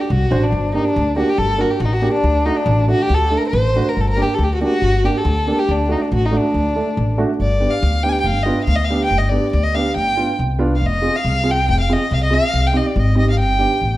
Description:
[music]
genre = klezmer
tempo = 140 BPM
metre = 2/4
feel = straight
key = D phrygian dominant, G phrygian dominant from 7.4 s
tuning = A4 = 440 Hz
[part]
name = dark violin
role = melody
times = 0.0-14.0 s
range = D4 to Ab5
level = -19 LUFS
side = left 1 dB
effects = none
[part]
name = upright bass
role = bass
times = 0.1-14.0 s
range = F1 to D2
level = -18 LUFS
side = equal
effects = none
[part]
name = dark upright piano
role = accompaniment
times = 0.3-13.7 s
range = A3 to C5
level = -21 LUFS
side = right 2 dB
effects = none
[sound]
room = moderate recital hall reverb, RT60 1.3 s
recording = dark, warm production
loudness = -15 LUFS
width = side -16 dB against mid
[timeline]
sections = 0.5-7.4 A section; 7.4-14.0 B section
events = none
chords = 0.0 D; 0.5 Gm; 2.2 D; 4.0 Gm; 5.7 D; 7.4 G; 10.8 Fm; 12.5 Cm; 13.4 G

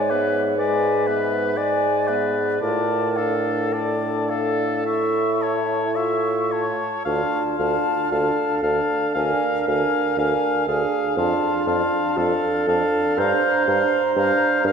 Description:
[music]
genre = classical, slow romantic movement for wind quintet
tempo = 53-63 BPM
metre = 4/4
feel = rubato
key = D minor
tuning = A4 = 441 Hz
[part]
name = silver concert flute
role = melody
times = 0.0-14.7 s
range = E5 to C#6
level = -27 LUFS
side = left 5 dB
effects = none
[part]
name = clear oboe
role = second line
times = 0.0-14.7 s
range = A4 to F5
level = -26 LUFS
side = left 2 dB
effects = none
[part]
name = clear French horn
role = accompaniment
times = 0.0-14.7 s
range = G#3 to F4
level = -28 LUFS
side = equal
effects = none
[part]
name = dark clarinet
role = accompaniment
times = 0.0-14.7 s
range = F4 to D5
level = -24 LUFS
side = right 4 dB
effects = none
[part]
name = dark bassoon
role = bass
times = 0.0-14.7 s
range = D2 to A2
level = -24 LUFS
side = equal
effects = none
[sound]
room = wet concert hall reverb, RT60 2.2 s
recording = recorded in a church or concert hall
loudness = -19 LUFS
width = side -6 dB against mid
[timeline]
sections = 0.0-14.7 A section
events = none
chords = 0.0 E7/G#; 2.6 Dm/A; 4.9 A; 7.1 Dm; 9.2 Ddim; 11.2 Dm/F; 13.2 Gm7

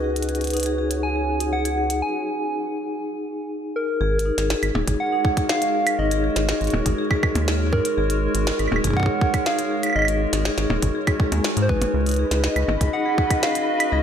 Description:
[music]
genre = IDM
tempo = 121 BPM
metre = 4/4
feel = straight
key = unclear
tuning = A4 = 439 Hz
[part]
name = soft struck synth lead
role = melody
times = 0.0-14.0 s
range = Bb4 to Ab5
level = -25 LUFS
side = right 1 dB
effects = chorus, tremolo, cassette tape, tape echo
[part]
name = warbly tape-like pad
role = sustained chords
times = 0.0-14.0 s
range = Ab3 to Eb5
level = -29 LUFS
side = right 2 dB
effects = chorus, built-in reverb, vintage 12-bit sampler grit
[part]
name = vibraphone with medium mallets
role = arpeggios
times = 0.0-14.0 s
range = Ab3 to Ab5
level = -26 LUFS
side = left 3 dB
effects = vintage 12-bit sampler grit, tape echo
[part]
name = rubbery square bass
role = bass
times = 0.0-14.0 s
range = Eb1 to Ab2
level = -24 LUFS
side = equal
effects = tube saturation
[part]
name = flickering grainy texture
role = texture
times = 0.0-2.0, 12.3-14.0 s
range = Gb4 to Cb6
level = -34 LUFS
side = right 2 dB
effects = built-in reverb
[part]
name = glitchy drum kit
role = drums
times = 0.2-13.9 s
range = claves, hi-hat, percussion blips, snare drum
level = -26 LUFS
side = right 1 dB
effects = studio reverb
[part]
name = electronic kick drum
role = drums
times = 4.9-13.4 s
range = none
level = -24 LUFS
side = equal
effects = studio reverb
[sound]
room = light reverb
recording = none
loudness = -19 LUFS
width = side -8 dB against mid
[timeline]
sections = 0.0-4.0 A section; 4.0-14.0 B section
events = break 2.0-4.0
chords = 0.0 Db9sus4; 4.0 Ab9sus4; 11.9 Db9sus4

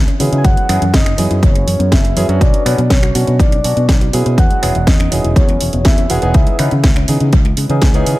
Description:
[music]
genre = nu-disco, nu disco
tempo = 122 BPM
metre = 4/4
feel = straight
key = unclear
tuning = A4 = 443 Hz
[part]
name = fingered electric bass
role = bass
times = 0.0-8.2 s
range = E1 to C#3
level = -16 LUFS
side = equal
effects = sidechain pumping
[part]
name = soft round pluck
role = arpeggios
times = 0.1-8.1 s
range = D#3 to B4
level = -24 LUFS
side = left 1 dB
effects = chorus, sidechain pumping, analog delay
[part]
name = house drum kit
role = drums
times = 0.1-8.2 s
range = finger snaps, hi-hat, snare drum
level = -21 LUFS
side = equal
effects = overdrive, tape echo
[part]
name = barky tine electric piano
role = accompaniment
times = 0.2-8.2 s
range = E3 to B4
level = -21 LUFS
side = equal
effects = phaser, sidechain pumping, tape echo
[part]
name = soft octave-layered synth lead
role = melody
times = 0.4-7.1 s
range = C#5 to G#5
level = -21 LUFS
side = equal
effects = chorus, analog delay
[part]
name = electronic kick drum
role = drums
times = 0.4-7.9 s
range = none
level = -12 LUFS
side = equal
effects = overdrive
[sound]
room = light reverb, digital ambience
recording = echo-heavy mix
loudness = -10 LUFS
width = side -17 dB against mid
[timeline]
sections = 0.0-8.2 A section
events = none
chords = 0.4 F#9sus4; 2.4 Bmadd9; 4.4 E69; 6.3 C#m9

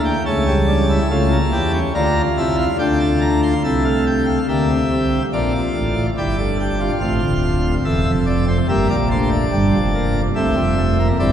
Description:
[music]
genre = classical, baroque-style 4-part fugue for pipe organ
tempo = 71 BPM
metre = 4/4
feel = straight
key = unclear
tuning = A4 = 440 Hz
[part]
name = pipe organ, plenum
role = solo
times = 0.0-11.3 s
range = D1 to C6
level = -15 LUFS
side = equal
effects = none
[sound]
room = wet cathedral reverb, RT60 6.0 s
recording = heard from further back in the room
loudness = -15 LUFS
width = side -9 dB against mid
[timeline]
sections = 0.0-3.7 A section; 3.7-11.3 B section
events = none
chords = 0.0 A7/C#; 2.0 Am/C; 5.4 Gm; 7.0 F; 8.7 Edim/G

